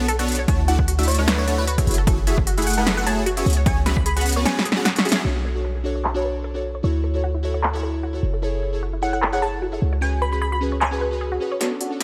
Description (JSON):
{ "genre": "future bass", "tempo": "151 BPM", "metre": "4/4", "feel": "swing 54% on 16ths, half-time", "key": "unclear", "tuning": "A4 = 440 Hz", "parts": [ { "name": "glassy wavetable pluck", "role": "melody", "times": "0.0-5.0, 9.0-11.4 s", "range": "B4 to B5", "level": "-30 LUFS", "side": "equal", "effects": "chorus, sidechain pumping, tape echo" }, { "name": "supersaw chords", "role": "riff", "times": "0.0-5.2, 11.6-11.9 s", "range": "A3 to F#5", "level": "-28 LUFS", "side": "equal", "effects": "analog chorus, sidechain pumping, low-pass filter, tape echo" }, { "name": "warm 808-style bass", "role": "bass", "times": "0.0-11.4 s", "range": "F#1 to D2", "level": "-25 LUFS", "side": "equal", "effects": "sidechain pumping" }, { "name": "unison pluck", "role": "arpeggios", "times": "0.1-11.6 s", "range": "E4 to F#5", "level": "-33 LUFS", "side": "equal", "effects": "phaser, sidechain pumping, tape echo" }, { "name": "big-room dance drum kit", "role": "drums", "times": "0.1-12.0 s", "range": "crash cymbal, handclaps, hi-hat, snare drum", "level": "-26 LUFS", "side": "equal", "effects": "overdrive, high-pass filter on hats, low-pass filter on hats, high-pass filter on snare, low-pass filter on snare, high-pass filter on cymbals, low-pass filter on cymbals, high-pass filter on room, low-pass filter on room" }, { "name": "electronic kick drum", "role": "drums", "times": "0.5-4.0 s", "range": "none", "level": "-24 LUFS", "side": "equal", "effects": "overdrive" }, { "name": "glassy digital keys", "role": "accompaniment", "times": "5.2-12.0 s", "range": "C#4 to C#5", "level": "-29 LUFS", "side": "equal", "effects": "chorus, sidechain pumping, tape echo" } ], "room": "light reverb", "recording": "none", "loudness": "-21 LUFS", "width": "mono", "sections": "0.0-5.2 A section; 5.2-11.6 B section", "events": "drop 0.0-5.2; drum fill 4.5-5.2, 11.6-12.0; band accent 5.1; filter sweep on synth arpeggio sound 5.2-11.6", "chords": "0.5 Dmaj9; 1.9 F#m9; 3.5 C#7sus4; 5.2 Bm9; 6.8 Dmaj9; 8.2 F#m9; 9.8 C#7sus4", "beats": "0.09 | 0.48 0.88 1.28 1.67 | 2.07 2.47 2.87 3.26 | 3.66 4.06 4.46 4.85 | 5.25 5.65 6.04 6.44 | 6.84 7.24 7.63 8.03 | 8.43 8.83 9.22 9.62 | 10.02 10.42 10.81 11.21 | 11.61 12.01" }